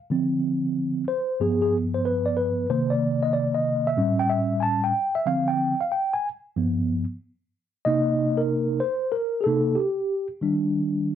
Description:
hip hop; 93 BPM; 4/4; swing 66% on 16ths; C dorian; A4 = 438 Hz
mellow tine electric piano; solo; 0.1-11.2 s; G2 to A5; -22 LUFS; equal; medium stereo tremolo
wet studio reverb, RT60 0.6 s; worn, warbling old tape, cassette tape, warbly pitch drift; -22 LUFS; side -10 dB against mid
0.0-7.9 A section; 7.9-11.2 B section
tine electric piano solo 0.0-7.9, 7.9-11.2
0.1 Dm7; 1.4 G7; 2.7 Cm7; 4.0 A7; 5.3 Dm7; 6.6 G7; 7.9 Cm7; 10.4 Ebmaj7

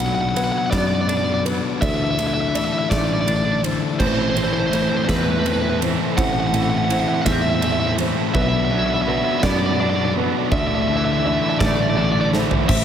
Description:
post-rock; 55 BPM (dotted quarters); 6/8; straight; A4 = 440 Hz
crunchy overdriven guitar; melody; 0.0-12.8 s; B4 to F#5; -23 LUFS; equal; analog delay
warm studio string section; sustained chords; 0.0-12.8 s; C4 to B5; -35 LUFS; right 2 dB
clean electric guitar; arpeggios; 0.0-12.7 s; A2 to D4; -32 LUFS; equal; tremolo, analog delay
felt-muted upright piano; arpeggios; 0.0-12.8 s; B4 to E5; -33 LUFS; right 6 dB; analog delay
thick fuzz guitar; riff; 0.0-12.8 s; A2 to E4; -23 LUFS; left 7 dB; distortion
picked electric bass; bass; 0.0-12.8 s; A1 to F#2; -24 LUFS; right 1 dB
huge arena drum kit; drums; 0.0-12.8 s; crash cymbal, kick drum, ride cymbal, snare drum, toms; -26 LUFS; right 1 dB
thick fuzz guitar; riff; 4.0-12.8 s; A2 to E4; -25 LUFS; right 13 dB; distortion
light reverb; -17 LUFS; side -9 dB against mid
0.0-12.7 A section
build-up 0.0-12.7; drum fill 12.3-12.7
0.0 Bm; 1.8 Dsus2; 4.0 Am; 8.4 Bm; 10.5 Dsus2

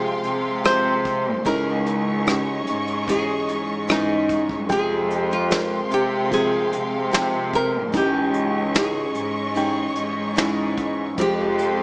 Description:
pop ballad; 74 BPM; 4/4; straight; A4 = 441 Hz
nylon-string guitar; melody; 0.0-11.8 s; Eb4 to C5; -24 LUFS; equal; digital delay
felt-muted upright piano; accompaniment; 0.0-11.8 s; Ab2 to G5; -26 LUFS; equal
warm studio string section; sustained chords; 0.0-11.8 s; Ab3 to Db6; -29 LUFS; equal
picked steel-string acoustic guitar; arpeggios; 0.0-11.8 s; F2 to Ab4; -30 LUFS; equal
rich studio cello section; bass; 0.0-11.8 s; Db2 to C3; -26 LUFS; equal
vintage brush drum kit; drums; 0.2-11.8 s; hi-hat, kick drum, rim click, snare drum; -25 LUFS; equal
light reverb, small room ambience; small speaker sound; -19 LUFS; side -33 dB against mid
0.0-11.8 A section
0.0 Fmadd9; 1.5 Dbmadd9; 4.7 Fmadd9; 7.9 Dbmadd9; 11.2 Fmadd9

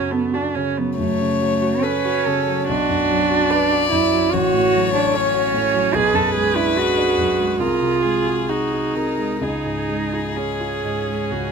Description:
classical, slow romantic movement for piano quartet; 63-75 BPM; 4/4; rubato; F# minor; A4 = 440 Hz
dark cello; second line; 0.0-11.5 s; A3 to A4; -20 LUFS; right 5 dB
warm grand piano; accompaniment; 0.0-11.5 s; A1 to C#5; -24 LUFS; left 1 dB
warm viola; accompaniment; 0.1-11.5 s; F#4 to B4; -29 LUFS; right 2 dB
warm violin; melody; 1.0-11.5 s; F#4 to D5; -23 LUFS; left 8 dB
little or no reverb; close, detailed microphones; -17 LUFS; side -6 dB against mid
0.0-11.5 A section
0.0 F#m; 2.7 Bm; 4.3 F#m/A; 5.9 G#m7b5/B; 7.6 G#7/B#; 9.4 C#

